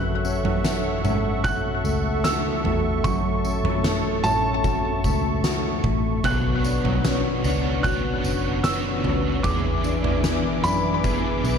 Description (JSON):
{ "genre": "dream pop", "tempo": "75 BPM", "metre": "4/4", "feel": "straight", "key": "F# minor", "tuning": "A4 = 439 Hz", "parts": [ { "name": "felt-muted upright piano", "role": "melody", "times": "0.0-11.4 s", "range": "A5 to F#6", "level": "-28 LUFS", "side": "equal", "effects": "ping-pong delay" }, { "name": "warm analog pad", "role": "sustained chords", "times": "0.0-11.6 s", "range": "A4 to D6", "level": "-29 LUFS", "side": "right 2 dB", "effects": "chorus" }, { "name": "mellow electric guitar", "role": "arpeggios", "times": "0.0-11.6 s", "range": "F#2 to G#4", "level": "-28 LUFS", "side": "left 5 dB", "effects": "lush chorus, ping-pong delay" }, { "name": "vintage muted fingered electric bass", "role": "bass", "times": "0.0-11.6 s", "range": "F#1 to A2", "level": "-27 LUFS", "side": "equal", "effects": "none" }, { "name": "oversized low-tuned drum kit", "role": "drums", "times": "0.2-11.6 s", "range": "kick drum, snare drum, tambourine, toms", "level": "-25 LUFS", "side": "equal", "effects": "none" }, { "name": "cranked stack guitar", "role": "accompaniment", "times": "6.2-11.6 s", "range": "B2 to C#5", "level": "-29 LUFS", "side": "right 4 dB", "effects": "overdrive, tremolo, ensemble chorus" } ], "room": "light reverb", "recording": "none", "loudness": "-20 LUFS", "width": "side -7 dB against mid", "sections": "0.0-11.6 A section", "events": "none", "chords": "0.0 F#m7; 6.2 Bmadd9; 9.4 E7" }